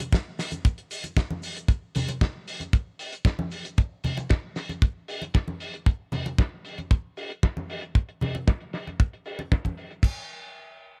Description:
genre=nu-disco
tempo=115 BPM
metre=4/4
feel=straight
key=none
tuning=none
part: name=damped 70s drum kit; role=drums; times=0.0-10.1 s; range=crash cymbal, hi-hat, shaker, snare drum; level=-35 LUFS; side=equal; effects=low-pass filter on hats, low-pass filter on cymbals, low-pass filter on snare, low-pass filter on perc, low-pass filter on room
part: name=congas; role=percussion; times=0.0-9.8 s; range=none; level=-34 LUFS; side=equal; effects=none
part: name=kick drum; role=drums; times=0.1-10.1 s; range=none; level=-23 LUFS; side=equal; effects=none
room=studio reverb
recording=none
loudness=-28 LUFS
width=mono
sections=0.0-10.0 A section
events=filter sweep on drum 0.0-10.0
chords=none

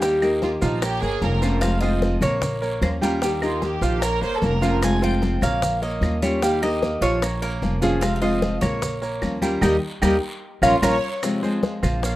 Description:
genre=latin, Cuban son and guajira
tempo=150 BPM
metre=4/4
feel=straight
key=F minor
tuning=A4 = 439 Hz
part: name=Cuban tres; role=melody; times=0.0-12.2 s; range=F4 to Ab5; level=-24 LUFS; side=equal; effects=none
part: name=nylon-string guitar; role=accompaniment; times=0.0-12.1 s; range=C3 to G4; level=-25 LUFS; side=left 2 dB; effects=none
part: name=bright grand piano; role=arpeggios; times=0.0-12.2 s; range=F3 to G5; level=-27 LUFS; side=right 3 dB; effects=none
part: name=upright bass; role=bass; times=0.0-12.2 s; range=F1 to Eb2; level=-25 LUFS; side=equal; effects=none
part: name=bongos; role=percussion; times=0.0-12.2 s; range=none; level=-30 LUFS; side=left 4 dB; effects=none
part: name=congas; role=percussion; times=0.0-12.2 s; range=none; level=-29 LUFS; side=left 1 dB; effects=none
part: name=guiro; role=percussion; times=0.0-12.2 s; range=none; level=-43 LUFS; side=left 1 dB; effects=none
part: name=maracas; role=percussion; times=0.0-12.2 s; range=none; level=-37 LUFS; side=right 3 dB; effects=none
part: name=claves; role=percussion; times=0.2-12.0 s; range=none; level=-32 LUFS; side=right 1 dB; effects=none
part: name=warm studio violin section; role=second line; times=0.4-4.7, 10.6-11.2 s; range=Eb4 to Db5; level=-27 LUFS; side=right 1 dB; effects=none
room=light reverb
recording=rough home demo mix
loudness=-19 LUFS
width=side -16 dB against mid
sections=0.0-11.2 A section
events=band accent 9.6-11.2; drum fill 10.6-11.2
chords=0.0 Eb; 0.8 Bbm; 1.6 Fm; 2.4 Bbm; 3.2 Eb; 4.0 Bbm; 4.8 Fm; 5.6 Bbm; 6.4 Eb; 7.2 Bbm; 8.0 Fm; 8.8 Bbm; 9.6 Eb; 10.4 Bbm; 11.2 Fm

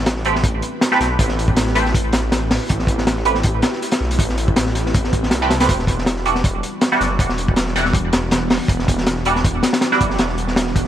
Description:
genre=drum and bass, jungle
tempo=160 BPM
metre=4/4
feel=swing 54% on 16ths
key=A minor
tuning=A4 = 438 Hz
part: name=detuned saw bass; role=bass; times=0.0-10.9 s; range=E1 to C2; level=-22 LUFS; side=equal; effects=none
part: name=crunchy breakbeat drum kit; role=drums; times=0.1-10.9 s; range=hi-hat, kick drum, snare drum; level=-18 LUFS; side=equal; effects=none
part: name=band-passed chord stab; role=stabs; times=0.3-10.7 s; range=E3 to B4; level=-21 LUFS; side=right 3 dB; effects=phaser, analog chorus, dub echo
room=studio reverb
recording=vinyl crackle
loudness=-15 LUFS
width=side -11 dB against mid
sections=0.0-10.9 A section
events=none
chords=0.0 Am9; 5.7 Em9

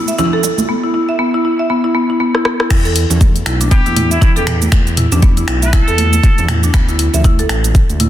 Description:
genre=afro house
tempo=119 BPM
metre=4/4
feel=swing 58% on 16ths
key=E minor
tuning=A4 = 440 Hz
part: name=buzzing marimba with hard mallets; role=arpeggios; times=0.0-8.1 s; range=B3 to E5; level=-17 LUFS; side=equal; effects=sidechain pumping, tape echo
part: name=afro-pop drum kit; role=drums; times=0.1-8.1 s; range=cabasa, crash cymbal, finger snaps, hi-hat, rim click, toms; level=-18 LUFS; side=equal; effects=high-pass filter on perc, small room ambience, high-pass filter on toms, soft clipping on snare, high-pass filter on snare, high-pass filter on hats, high-pass filter on cymbals
part: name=congas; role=percussion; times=0.2-8.1 s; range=none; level=-21 LUFS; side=right 3 dB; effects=none
part: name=smooth synth bass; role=bass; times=2.7-8.1 s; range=A1 to E2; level=-16 LUFS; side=equal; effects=sidechain pumping
part: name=electronic kick drum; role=drums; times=2.7-7.9 s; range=none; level=-11 LUFS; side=equal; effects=small room ambience
part: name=trumpet with straight mute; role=melody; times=3.7-6.4 s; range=E4 to B4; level=-21 LUFS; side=equal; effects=tape echo
room=light reverb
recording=dense, heavily limited modern master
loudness=-11 LUFS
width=side -12 dB against mid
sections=0.0-2.7 A section; 2.7-8.1 B section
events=build-up 0.0-2.7; drum fill 0.0-0.7, 2.3-2.7; drop 2.7-8.1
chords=0.0 Bsus4; 2.7 E5; 6.7 D5

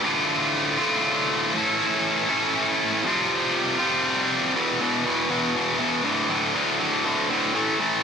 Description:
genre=rock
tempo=120 BPM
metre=3/4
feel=straight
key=D minor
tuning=A4 = 436 Hz
part: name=tight distorted guitar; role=solo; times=0.0-8.0 s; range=D2 to A4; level=-20 LUFS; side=equal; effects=distortion, slapback echo
room=wet lush hall reverb, RT60 2.8 s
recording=big arena sound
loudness=-20 LUFS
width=side -6 dB against mid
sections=0.0-4.6 A section; 4.6-8.0 B section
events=build-up 4.6-8.0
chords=0.0 Dm; 1.5 A; 3.1 Fsus2; 4.6 E5; 6.1 D5

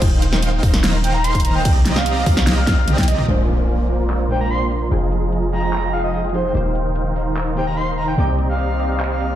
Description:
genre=future bass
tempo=147 BPM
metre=4/4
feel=half-time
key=Eb major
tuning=A4 = 442 Hz
part: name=ethereal airy pad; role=sustained chords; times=0.0-9.4 s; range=C3 to Eb4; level=-31 LUFS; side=right 2 dB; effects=ensemble chorus, built-in reverb, vintage 12-bit sampler grit, sidechain pumping
part: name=supersaw chords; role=riff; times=0.0-9.4 s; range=Eb3 to Bb5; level=-23 LUFS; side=right 1 dB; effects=sidechain pumping, low-pass filter
part: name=warm 808-style bass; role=bass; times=0.0-9.4 s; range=Eb1 to C2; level=-20 LUFS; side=equal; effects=sidechain pumping
part: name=electronic kick drum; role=drums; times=0.0-3.1 s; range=none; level=-17 LUFS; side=equal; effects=none
part: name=pop drum kit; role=drums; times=0.0-9.3 s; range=crash cymbal, handclaps, hi-hat, snare drum, toms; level=-22 LUFS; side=equal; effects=overdrive, low-pass filter on hats, low-pass filter on snare, low-pass filter on cymbals, low-pass filter on toms, low-pass filter on room
part: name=breathy flute-like synth lead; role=melody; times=1.0-9.4 s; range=C5 to C6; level=-24 LUFS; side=right 1 dB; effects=lush chorus, vintage 12-bit sampler grit, sidechain pumping, dub echo
part: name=soft round pluck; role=accompaniment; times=3.3-9.4 s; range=Bb2 to D6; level=-28 LUFS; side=right 1 dB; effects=chorus, sidechain pumping, ping-pong delay
part: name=impact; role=sound effects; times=3.3-4.9 s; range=none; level=-30 LUFS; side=left 1 dB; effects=none
room=light reverb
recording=played on a big sound system in a bare room, stone room reverb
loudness=-16 LUFS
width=side -12 dB against mid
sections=0.0-3.3 A section; 3.3-9.4 B section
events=drop 0.0-3.3; drum fill 2.7-3.3; impact 3.3-4.9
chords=0.0 Eb6; 1.7 Cm9; 3.3 Bb9; 4.9 Fm9; 6.5 Eb6; 8.2 Cm9

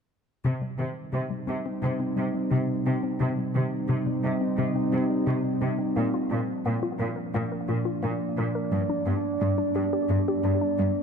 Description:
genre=cinematic, hybrid orchestral and electronic film score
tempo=87 BPM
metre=4/4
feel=straight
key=C minor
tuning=A4 = 435 Hz
part: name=deep rumbling drone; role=sustained chords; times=1.4-11.0 s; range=F3 to D5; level=-27 LUFS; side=right 1 dB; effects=built-in reverb
part: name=woody wave-folded pluck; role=arpeggios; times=0.4-10.9 s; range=C3 to Bb4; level=-31 LUFS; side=left 3 dB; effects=chorus, ping-pong delay
part: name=rich symphonic cello section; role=bass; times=0.4-10.9 s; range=G2 to C3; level=-29 LUFS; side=equal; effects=none
room=wet recital hall reverb, RT60 1.6 s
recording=none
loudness=-24 LUFS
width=side -6 dB against mid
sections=0.4-11.0 A section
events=build-up 0.4-11.0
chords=0.4 Cm; 6.0 Bb; 8.7 G

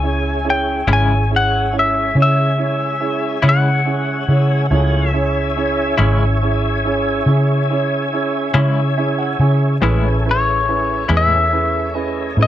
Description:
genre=blues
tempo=47 BPM (dotted quarters)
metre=12/8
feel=straight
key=C# minor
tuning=A4 = 440 Hz
part: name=clean lap steel guitar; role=melody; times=0.0-12.5 s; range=C#5 to G#5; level=-19 LUFS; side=left 3 dB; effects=none
part: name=warm grand piano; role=accompaniment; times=0.0-12.5 s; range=C#4 to G#5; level=-22 LUFS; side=right 6 dB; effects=none
part: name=tonewheel organ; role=sustained chords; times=0.0-12.5 s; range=E#3 to G#4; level=-23 LUFS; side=left 1 dB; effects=slow rotary speaker, chorus vibrato
part: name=vintage muted fingered electric bass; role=bass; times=0.0-12.5 s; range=G#1 to C#3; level=-18 LUFS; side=equal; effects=none
part: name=semi-hollow electric guitar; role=accompaniment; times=0.9-11.4 s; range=A2 to E4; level=-20 LUFS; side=left 4 dB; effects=tremolo
room=light reverb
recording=none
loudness=-14 LUFS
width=side -12 dB against mid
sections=0.0-12.5 A section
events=grand piano fill 8.5-9.8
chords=0.0 C#m; 9.8 Amaj7

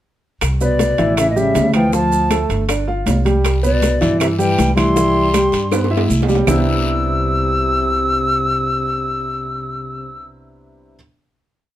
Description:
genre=Afro-Cuban jazz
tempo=158 BPM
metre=4/4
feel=straight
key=C major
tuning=A4 = 441 Hz
part: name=upright bass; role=bass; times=0.4-11.0 s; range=G1 to G2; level=-20 LUFS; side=equal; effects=none
part: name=bongos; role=percussion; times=0.4-6.6 s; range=none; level=-27 LUFS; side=left 9 dB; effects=none
part: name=claves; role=percussion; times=0.4-6.6 s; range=none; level=-27 LUFS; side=right 6 dB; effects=none
part: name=congas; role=percussion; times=0.4-6.6 s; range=none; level=-23 LUFS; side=equal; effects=none
part: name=maracas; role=percussion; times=0.4-6.6 s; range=none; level=-32 LUFS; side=right 7 dB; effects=none
part: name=timbales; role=percussion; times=0.4-6.6 s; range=none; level=-25 LUFS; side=right 4 dB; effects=none
part: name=hollow concert flute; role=melody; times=0.6-10.3 s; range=D5 to E6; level=-20 LUFS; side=equal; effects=plate reverb
part: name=breathy trombone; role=second line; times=0.6-10.2 s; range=Bb2 to G3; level=-22 LUFS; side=left 3 dB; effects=none
part: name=warm grand piano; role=accompaniment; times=0.6-11.0 s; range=C3 to F5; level=-20 LUFS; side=right 1 dB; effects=none
part: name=guiro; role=percussion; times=3.5-6.6 s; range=none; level=-31 LUFS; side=left 5 dB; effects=none
room=light reverb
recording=none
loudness=-14 LUFS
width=side -12 dB against mid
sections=0.4-6.5 A section; 6.5-9.5 final chord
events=drum fill 5.7-6.5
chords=0.4 Cmaj9; 1.2 A7; 1.9 Dmadd11; 2.7 G5; 3.4 Cmaj7; 6.5 Cmaj9

